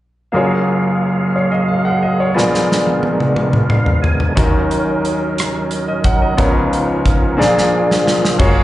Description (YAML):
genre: slow gospel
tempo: 60 BPM (dotted quarters)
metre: 6/8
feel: straight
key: F# major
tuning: A4 = 443 Hz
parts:
  - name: bright grand piano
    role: accompaniment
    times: 0.3-8.6 s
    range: F#1 to F#5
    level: -16 LUFS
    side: left 1 dB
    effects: slapback echo
  - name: tonewheel organ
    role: sustained chords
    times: 0.3-8.6 s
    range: E#3 to G#5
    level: -20 LUFS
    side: right 3 dB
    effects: fast rotary speaker, overdrive, chorus vibrato
  - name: modern studio drum kit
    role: drums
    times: 2.4-8.6 s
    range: crash cymbal, hi-hat, kick drum, rim click, snare drum, toms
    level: -16 LUFS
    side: equal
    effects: none
  - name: deep dub fingered electric bass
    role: bass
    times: 8.4-8.6 s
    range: F#1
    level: -15 LUFS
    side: equal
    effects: none
room: light reverb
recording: live gig heard through the venue's PA, club reverb, nothing above 10.7 kHz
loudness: -13 LUFS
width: side -15 dB against mid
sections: 0.3-8.4 A section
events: drum fill 2.4-4.4, 7.4-8.4; tonewheel organ fill 3.4-4.4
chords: 0.3 F#maj9; 2.4 A#7b9; 4.4 D#m7; 6.4 C#13; 7.4 A#7